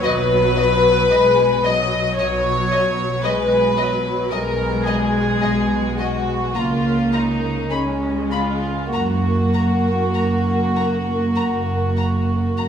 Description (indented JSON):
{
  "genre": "classical, slow romantic movement for string orchestra",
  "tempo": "49-57 BPM",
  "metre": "4/4",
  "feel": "rubato",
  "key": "unclear",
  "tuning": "A4 = 441 Hz",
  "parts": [
    { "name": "warm symphonic violin section", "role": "melody", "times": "0.0-12.7 s", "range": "D#5 to B5", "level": "-29 LUFS", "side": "left 4 dB", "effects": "none" },
    { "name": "warm symphonic violin section", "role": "second line", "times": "0.0-12.7 s", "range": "C#4 to D#5", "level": "-20 LUFS", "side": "left 2 dB", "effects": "none" },
    { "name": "dark symphonic viola section", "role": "accompaniment", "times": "0.0-12.7 s", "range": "F#3 to A#3", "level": "-22 LUFS", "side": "equal", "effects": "none" },
    { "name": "dark symphonic double bass section", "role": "bass", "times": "0.0-12.7 s", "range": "F#1 to C#2", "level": "-26 LUFS", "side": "right 2 dB", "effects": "none" },
    { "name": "warm chamber cello section", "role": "bass", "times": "0.0-12.7 s", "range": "F#2 to C#3", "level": "-24 LUFS", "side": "right 1 dB", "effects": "none" }
  ],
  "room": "wet concert hall reverb, RT60 1.8 s",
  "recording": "small room ambience",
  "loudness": "-16 LUFS",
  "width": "side -8 dB against mid",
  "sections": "0.0-12.7 A section",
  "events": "none",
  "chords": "0.0 B; 6.6 C#69; 7.7 C#; 8.9 F#"
}